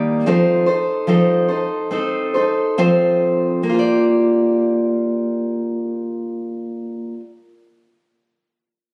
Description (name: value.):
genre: pop.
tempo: 65-76 BPM.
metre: 4/4.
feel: straight.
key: Bb major.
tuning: A4 = 441 Hz.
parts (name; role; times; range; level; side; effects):
picked steel-string acoustic guitar; solo; 0.0-7.3 s; Eb3 to D5; -18 LUFS; equal; none.
room: moderate lush hall reverb, RT60 2.2 s.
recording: recorded on a phone in the room, studio reverb, compression.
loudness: -18 LUFS.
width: mono.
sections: 0.0-3.7 A section; 3.7-7.4 B section.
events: slowing down 0.0-3.7.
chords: 0.3 F7; 3.7 Bb6.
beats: | 0.26 1.07 1.91 2.78 | 3.68 4.60 5.53 6.45.